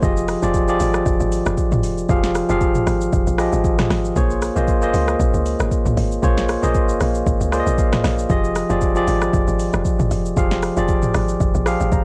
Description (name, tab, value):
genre	amapiano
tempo	116 BPM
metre	4/4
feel	swing 55% on 16ths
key	unclear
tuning	A4 = 440 Hz
part	bright tine electric piano	accompaniment	0.0-12.0 s	F3 to Bb5	-22 LUFS	equal	none
part	woody log drum bass	bass	0.0-12.0 s	F1 to Db2	-24 LUFS	equal	none
part	deep house drum kit	drums	0.0-12.0 s	hi-hat, kick drum, rim click, shaker, snare drum, toms	-23 LUFS	equal	vintage 12-bit sampler grit
room	little or no reverb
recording	dry, gritty hardware recording, cassette tape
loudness	-19 LUFS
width	mono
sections	0.0-12.0 A section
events	tine electric piano fill 7.5-8.3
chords	0.0 Fm7; 4.2 Bbm7; 8.3 Fm7